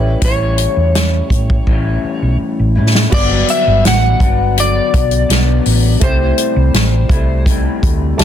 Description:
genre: indie pop, bedroom pop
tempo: 83 BPM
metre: 4/4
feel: straight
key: unclear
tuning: A4 = 440 Hz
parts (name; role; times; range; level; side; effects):
- electric slide guitar; melody; 0.0-7.4 s; B4 to F#5; -18 LUFS; left 1 dB; wide subtle chorus, digital delay
- dark upright piano; accompaniment; 0.0-8.2 s; G3 to A5; -27 LUFS; right 4 dB; cassette tape
- electric guitar through a small old amp; accompaniment; 0.0-8.2 s; G2 to E4; -20 LUFS; left 5 dB; lush chorus, warbly pitch drift
- hollow-body short-scale fingered electric bass; bass; 0.0-8.2 s; G1 to A2; -14 LUFS; equal; none
- unplugged drum kit; drums; 0.2-8.2 s; crash cymbal, hi-hat, kick drum, snare drum; -15 LUFS; equal; none
room: small room ambience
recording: dense, heavily limited modern master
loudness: -11 LUFS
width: side -10 dB against mid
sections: 0.0-3.1 A section; 3.1-8.2 B section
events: drum fill 1.7-3.1; upright piano fill 7.8-8.2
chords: 0.0 A7; 3.1 Gmaj7; 6.0 C6

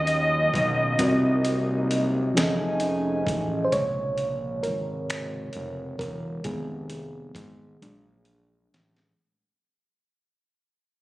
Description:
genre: slow six-eight R&B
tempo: 44 BPM (dotted quarters)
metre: 6/8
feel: straight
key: Bb minor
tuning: A4 = 440 Hz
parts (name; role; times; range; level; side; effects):
- clear flugelhorn; melody; 0.0-2.8 s; Eb5; -26 LUFS; equal; slapback echo
- mellow FM electric piano; accompaniment; 0.0-9.2 s; C3 to Eb5; -27 LUFS; equal; chorus
- hollow soft pad; sustained chords; 0.0-3.7 s; C3 to G#5; -32 LUFS; right 1 dB; chorus
- fat analog bass; bass; 0.0-9.1 s; E1 to Eb2; -31 LUFS; equal; none
- dusty soul sampler-style drum kit; drums; 0.1-9.2 s; finger snaps, hi-hat, kick drum, snare drum; -29 LUFS; equal; none
room: light reverb, digital ambience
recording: recorded on a phone in the room, studio reverb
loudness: -23 LUFS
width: side -18 dB against mid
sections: 0.0-3.7 A section; 3.7-9.2 B section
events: fade-out 3.7-9.2; FM electric piano solo 3.7-9.2; drum fill 7.8-9.2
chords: 0.0 Ebm9; 1.0 Cm7b5; 2.4 F7alt; 3.7 Bbm9; 6.4 Fm7b5; 7.8 Bbaug7

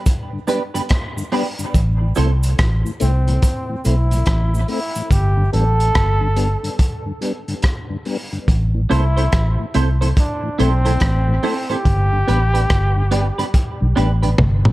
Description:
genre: dub reggae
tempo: 71 BPM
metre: 4/4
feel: swing 63% on 16ths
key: unclear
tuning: A4 = 440 Hz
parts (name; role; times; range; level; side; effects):
- crunchy breakbeat drum kit; drums; 0.1-14.7 s; hi-hat, kick drum, rim click, toms; -20 LUFS; equal; none
- cabasa; percussion; 0.1-5.4 s; none; -36 LUFS; right 3 dB; none
- mellow tonewheel organ; accompaniment; 0.3-14.7 s; G2 to E4; -27 LUFS; left 2 dB; chorus vibrato, slow rotary speaker, dub echo
- clean electric guitar; accompaniment; 0.5-2.3, 8.9-14.3 s; B3 to C5; -24 LUFS; right 3 dB; ensemble chorus, dub echo
- vintage muted fingered electric bass; bass; 1.8-14.7 s; G1 to C2; -16 LUFS; equal; none
- clear trombone; melody; 3.0-14.2 s; C4 to A4; -24 LUFS; equal; dub echo
room: light reverb, small room ambience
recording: dark, warm production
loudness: -15 LUFS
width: side -18 dB against mid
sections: 0.0-14.7 A section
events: break 0.0-1.7; part muted 5.1-14.7; drum fill 14.4-14.7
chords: 0.0 G; 1.7 Am; 5.1 G; 8.5 Am; 11.9 G

